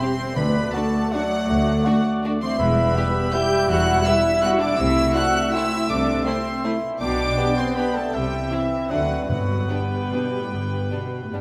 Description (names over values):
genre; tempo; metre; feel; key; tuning
classical, orchestral ballroom waltz; 137-175 BPM; 3/4; rubato; G major; A4 = 443 Hz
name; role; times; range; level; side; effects
warm symphonic violin section; melody; 0.0-11.3 s; E5 to G6; -32 LUFS; equal; none
clear cor anglais; second line; 0.0-11.4 s; B4 to G5; -33 LUFS; equal; none
clear studio violin section; second line; 0.0-11.4 s; A3 to G4; -38 LUFS; equal; none
dark clarinet; second line; 0.0-11.4 s; G3 to C4; -31 LUFS; equal; none
large flute ensemble; second line; 0.0-11.3 s; E4 to G5; -31 LUFS; equal; none
dark symphonic viola section; accompaniment; 0.0-11.3 s; E3 to G4; -31 LUFS; equal; none
mellow bassoon; accompaniment; 0.0-11.4 s; G3 to G4; -30 LUFS; equal; none
dark French horn section; sustained chords; 0.0-11.4 s; G3 to G4; -33 LUFS; equal; none
concert harp; arpeggios; 0.0-11.4 s; E2 to E5; -37 LUFS; equal; none
dark symphonic double bass section; bass; 0.4-10.8 s; E1 to D2; -31 LUFS; equal; none
rich symphonic cello section; bass; 0.4-11.4 s; D2 to D3; -30 LUFS; equal; none
timpani; percussion; 0.4-0.9, 9.3-9.9 s; G2 to D3; -33 LUFS; equal; none
room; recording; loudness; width
wet scoring stage reverb, RT60 2.0 s; none; -21 LUFS; mono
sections
0.0-11.4 A section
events
none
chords
0.4 D; 2.6 Em; 4.8 Am/C; 7.0 G/B; 8.1 C; 8.9 D13; 9.3 G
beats
0.00 | 0.36 0.73 1.12 | 1.49 1.85 2.23 | 2.58 2.95 3.33 | 3.69 4.05 4.42 | 4.78 5.15 5.53 | 5.89 6.26 6.64 | 7.01 7.38 7.77 | 8.14 8.51 8.91 | 9.29 9.70 10.13 | 10.52 10.92 11.33